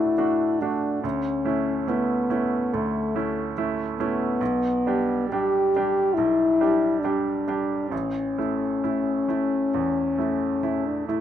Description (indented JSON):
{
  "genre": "classical, romantic duo for French horn and grand piano",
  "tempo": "65-72 BPM",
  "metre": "4/4",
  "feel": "rubato",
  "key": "unclear",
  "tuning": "A4 = 439 Hz",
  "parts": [
    { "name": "mellow French horn", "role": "melody", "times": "0.0-11.2 s", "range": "A3 to G4", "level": "-23 LUFS", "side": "left 2 dB", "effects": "none" },
    { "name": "bright baby grand piano", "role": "accompaniment", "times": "0.0-11.2 s", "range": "A1 to G4", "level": "-27 LUFS", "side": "right 5 dB", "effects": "none" }
  ],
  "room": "light reverb",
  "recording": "dark, warm production",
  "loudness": "-22 LUFS",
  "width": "side -10 dB against mid",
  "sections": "0.0-11.2 A section",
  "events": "none",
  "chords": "0.0 D; 1.0 A/D; 4.4 G/B; 7.9 A",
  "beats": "0.17 | 1.04 1.88 2.73 3.56 | 4.40 5.30 6.16 7.02 | 7.92 8.84 9.74 10.64"
}